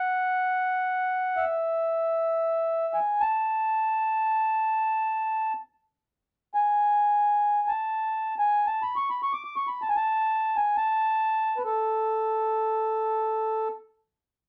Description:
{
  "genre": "Arabic maqam ensemble",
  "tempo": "free time",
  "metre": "none",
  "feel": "none",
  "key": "A maqam ajam",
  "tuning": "A4 = 440 Hz",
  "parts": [
    { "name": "mellow accordion", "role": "solo", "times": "0.0-13.7 s", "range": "A4 to D6", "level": "-26 LUFS", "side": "equal", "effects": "none" }
  ],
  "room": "moderate studio ambience, RT60 0.5 s",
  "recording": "dark, warm production",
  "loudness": "-26 LUFS",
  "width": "mono",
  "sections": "0.0-14.5 A section",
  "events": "none",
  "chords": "none"
}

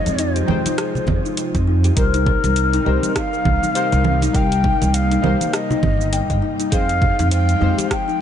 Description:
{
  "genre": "organic downtempo",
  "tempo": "101 BPM",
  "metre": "4/4",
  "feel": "swing 58% on 16ths",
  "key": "F minor",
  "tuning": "A4 = 440 Hz",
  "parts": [
    { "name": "breathy mellow ney", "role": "melody", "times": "0.0-8.2 s", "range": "Bb4 to G5", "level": "-22 LUFS", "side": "left 3 dB", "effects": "vintage 12-bit sampler grit, tape echo, shimmer reverb" },
    { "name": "deep mellow chord stab", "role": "accompaniment", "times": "0.0-8.2 s", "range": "Ab3 to G5", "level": "-28 LUFS", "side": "left 4 dB", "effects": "chorus, sidechain pumping, ping-pong delay, shimmer reverb" },
    { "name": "airy breathy pad", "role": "sustained chords", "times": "0.0-8.2 s", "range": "C3 to G5", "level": "-28 LUFS", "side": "equal", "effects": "chorus, sidechain pumping, shimmer reverb" },
    { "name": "kalimba", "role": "arpeggios", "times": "0.0-8.2 s", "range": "Eb4 to G5", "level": "-26 LUFS", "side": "left 3 dB", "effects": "ping-pong delay, shimmer reverb" },
    { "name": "upright bass", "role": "bass", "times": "0.1-7.7 s", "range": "G1 to F2", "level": "-19 LUFS", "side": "right 1 dB", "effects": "sidechain pumping" },
    { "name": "afro-pop drum kit", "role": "drums", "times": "0.1-8.2 s", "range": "congas, hi-hat, rim click, shaker", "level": "-24 LUFS", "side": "right 5 dB", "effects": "none" },
    { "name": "congas", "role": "percussion", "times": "0.1-7.9 s", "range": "none", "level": "-27 LUFS", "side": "left 1 dB", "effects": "none" },
    { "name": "electronic kick drum", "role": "drums", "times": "1.1-8.0 s", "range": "none", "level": "-22 LUFS", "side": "right 1 dB", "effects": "none" }
  ],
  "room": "light reverb, studio reverb",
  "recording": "nothing above 10.3 kHz",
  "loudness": "-16 LUFS",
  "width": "side -9 dB against mid",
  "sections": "0.0-8.2 A section",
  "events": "none",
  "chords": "0.0 Fm9; 2.0 Cm7; 6.7 Fm9"
}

